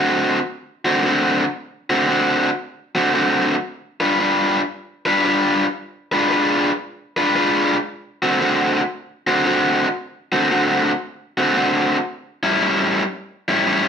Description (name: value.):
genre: blues.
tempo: 114 BPM.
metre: 4/4.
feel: swing 65% on 8ths.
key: D mixolydian.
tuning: A4 = 439 Hz.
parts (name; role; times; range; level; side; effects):
overdriven electric guitar; solo; 0.0-13.9 s; A2 to B4; -16 LUFS; equal; none.
room: moderate studio reverb, RT60 0.8 s.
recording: band playing live in one room, nothing above 10.8 kHz.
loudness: -17 LUFS.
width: side -7 dB against mid.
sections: 0.0-13.9 A section.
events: none.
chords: 0.0 D7; 3.7 G7; 5.8 G#dim7; 7.9 D7; 12.1 A7.